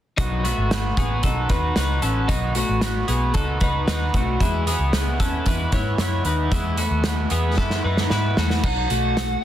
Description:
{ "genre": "jangly indie pop", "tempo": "114 BPM", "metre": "4/4", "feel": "straight", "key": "unclear", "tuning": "A4 = 436 Hz", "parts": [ { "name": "raw garage guitar", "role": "accompaniment", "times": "0.2-8.6 s", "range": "B2 to B4", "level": "-27 LUFS", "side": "right 4 dB", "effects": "overdrive" }, { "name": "twelve-string electric guitar", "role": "arpeggios", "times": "0.2-9.4 s", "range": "F#3 to C#5", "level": "-26 LUFS", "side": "left 4 dB", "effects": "lush chorus" }, { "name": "vintage muted picked electric bass", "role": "bass", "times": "0.2-9.4 s", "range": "G#1 to G#2", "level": "-24 LUFS", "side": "equal", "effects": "none" }, { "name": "loose indie drum kit", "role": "drums", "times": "0.2-9.3 s", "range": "crash cymbal, hi-hat, kick drum, snare drum", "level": "-24 LUFS", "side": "equal", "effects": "none" }, { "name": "lead guitar through a small cranked amp", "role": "melody", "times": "8.7-9.4 s", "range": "F#5", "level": "-25 LUFS", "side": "right 2 dB", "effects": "overdrive, slapback echo" } ], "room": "light reverb, small room reverb", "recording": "dense, heavily limited modern master", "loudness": "-19 LUFS", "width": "side -11 dB against mid", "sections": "0.2-8.6 A section", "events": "drum fill 7.6-8.6", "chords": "0.2 B; 4.4 E; 8.6 B" }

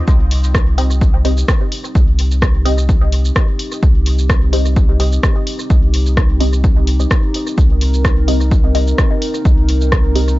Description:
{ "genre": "dub techno", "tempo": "128 BPM", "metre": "4/4", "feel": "straight", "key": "C minor", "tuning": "A4 = 441 Hz", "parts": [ { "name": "dark analog pad", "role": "sustained chords", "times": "0.0-10.4 s", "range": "C4 to Bb4", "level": "-24 LUFS", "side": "right 1 dB", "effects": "wide subtle chorus, sidechain pumping" }, { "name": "filtered dub chord stab", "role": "stabs", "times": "0.0-10.4 s", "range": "C4 to Eb5", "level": "-24 LUFS", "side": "left 1 dB", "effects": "phaser, sidechain pumping, dub echo" }, { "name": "warm sub bass", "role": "bass", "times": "0.1-10.4 s", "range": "C2", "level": "-14 LUFS", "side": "equal", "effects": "sidechain pumping" }, { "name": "deep house drum kit", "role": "drums", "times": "0.1-10.4 s", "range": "hi-hat, rim click, shaker", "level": "-22 LUFS", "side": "equal", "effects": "dub echo" }, { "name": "electronic kick drum", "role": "drums", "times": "0.1-10.0 s", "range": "none", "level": "-13 LUFS", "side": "equal", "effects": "none" } ], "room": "little or no reverb", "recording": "dry, gritty hardware recording, cassette tape, nothing above 7.6 kHz", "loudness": "-12 LUFS", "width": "side -18 dB against mid", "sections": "0.1-10.4 A section", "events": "filter sweep on synth stab 0.1-10.4", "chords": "0.1 Cm" }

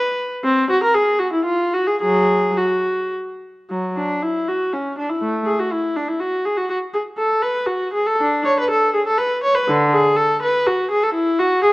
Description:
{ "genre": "classical, baroque-style suite movement for unaccompanied viola", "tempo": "101-125 BPM", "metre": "3/4", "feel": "rubato", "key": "F# minor", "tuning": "A4 = 440 Hz", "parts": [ { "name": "warm viola", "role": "solo", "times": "0.0-11.7 s", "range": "D3 to C#5", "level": "-16 LUFS", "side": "equal", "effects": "none" } ], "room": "moderate recital hall reverb, RT60 1.6 s", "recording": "worn, warbling old tape, cassette tape, warbly pitch drift", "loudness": "-16 LUFS", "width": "side -21 dB against mid", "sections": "0.0-3.7 A section; 3.7-11.7 B section", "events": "none", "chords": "none" }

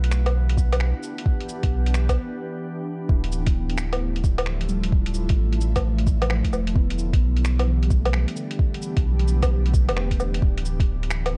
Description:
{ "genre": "future garage", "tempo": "131 BPM", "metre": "4/4", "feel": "swing 64% on 16ths", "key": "D dorian", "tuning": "A4 = 440 Hz", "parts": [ { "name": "ethereal airy pad", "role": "sustained chords", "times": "0.0-11.4 s", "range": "D3 to G4", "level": "-35 LUFS", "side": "equal", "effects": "ensemble chorus, built-in reverb, phaser, sidechain pumping" }, { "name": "warm sub bass", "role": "bass", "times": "0.0-11.4 s", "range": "D1 to B1", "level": "-25 LUFS", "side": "equal", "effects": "sidechain pumping" }, { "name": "lo-fi sampler-style drum kit", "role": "drums", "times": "0.0-11.3 s", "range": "cabasa, finger snaps, hi-hat, woodblock", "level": "-32 LUFS", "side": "equal", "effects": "studio reverb" }, { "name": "drifting glass-harmonics texture", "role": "texture", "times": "0.0-2.2 s", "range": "B3 to B4", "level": "-42 LUFS", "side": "equal", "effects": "chorus, built-in reverb" }, { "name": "electronic kick drum", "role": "drums", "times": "0.6-10.9 s", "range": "none", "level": "-24 LUFS", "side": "equal", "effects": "overdrive, studio reverb" }, { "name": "muted felt-like synth keys", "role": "accompaniment", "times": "3.1-10.4 s", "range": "D3 to E4", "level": "-35 LUFS", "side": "equal", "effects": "chorus, sidechain pumping, analog delay" } ], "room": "little or no reverb", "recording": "dark, warm production", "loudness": "-23 LUFS", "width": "mono", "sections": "0.0-3.1 A section; 3.1-11.4 B section", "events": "break 2.2-3.1", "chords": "0.0 Em7; 3.1 Dmadd9; 6.8 Em7; 10.4 Dsus2" }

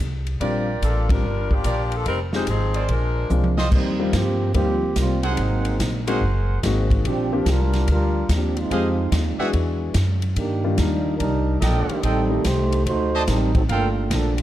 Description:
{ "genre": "jazz, big band swing", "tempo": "144 BPM", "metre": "4/4", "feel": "swing 66% on 8ths", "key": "Bb major", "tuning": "A4 = 440 Hz", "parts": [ { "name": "upright bass", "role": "bass", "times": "0.0-14.4 s", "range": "F1 to G2", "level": "-22 LUFS", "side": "equal", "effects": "none" }, { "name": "swinging big-band drum kit", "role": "drums", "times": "0.3-14.4 s", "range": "crash cymbal, hi-hat, kick drum, ride cymbal, snare drum, toms", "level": "-26 LUFS", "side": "equal", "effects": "none" }, { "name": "warm upright piano", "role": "accompaniment", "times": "0.4-12.4 s", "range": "Eb3 to G4", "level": "-27 LUFS", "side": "left 3 dB", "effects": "none" }, { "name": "clear trumpet section", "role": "stabs", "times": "0.4-13.9 s", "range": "F4 to A5", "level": "-28 LUFS", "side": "right 3 dB", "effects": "none" }, { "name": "edgy saxophone section", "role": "melody", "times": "0.8-3.6 s", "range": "F3 to C5", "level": "-26 LUFS", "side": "left 3 dB", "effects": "none" }, { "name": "warm trombone section", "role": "second line", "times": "3.7-14.4 s", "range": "Eb3 to C5", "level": "-24 LUFS", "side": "right 2 dB", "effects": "none" } ], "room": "light reverb", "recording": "dark, warm production", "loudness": "-19 LUFS", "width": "side -13 dB against mid", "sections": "0.0-3.7 A section; 3.7-14.4 B section", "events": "band accent 1.0; drum fill 3.3-3.7; trombone section solo 3.7-14.4", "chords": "0.4 Bb6; 2.1 Fm7; 2.9 Bb9; 3.7 Eb69; 5.4 Ab9; 7.0 Bb69; 8.7 Fm7; 9.5 E9; 10.4 Ebmaj7; 12.0 Am7b5; 12.9 D7b9; 13.7 Gm9" }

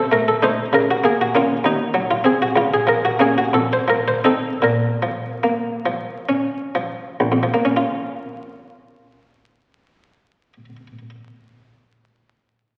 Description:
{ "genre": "classical, baroque-style suite movement for harpsichord", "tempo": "43-67 BPM (dotted quarters)", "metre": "6/8", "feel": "rubato", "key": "Bb minor", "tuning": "A4 = 439 Hz", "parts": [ { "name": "buff-stop harpsichord", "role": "solo", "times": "0.0-11.1 s", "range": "Bb1 to C5", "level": "-19 LUFS", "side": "equal", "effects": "none" } ], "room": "wet concert hall reverb, RT60 2.1 s", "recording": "very old 78 rpm record, vinyl crackle", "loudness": "-19 LUFS", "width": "mono", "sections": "0.0-7.2 A section; 7.2-12.5 B section", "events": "slowing down 1.6-7.2", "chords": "0.0 Cm6; 0.7 Bbm/Db; 1.6 Cdim/Eb; 2.6 Bbm/Db; 3.5 F5; 4.6 Bbm" }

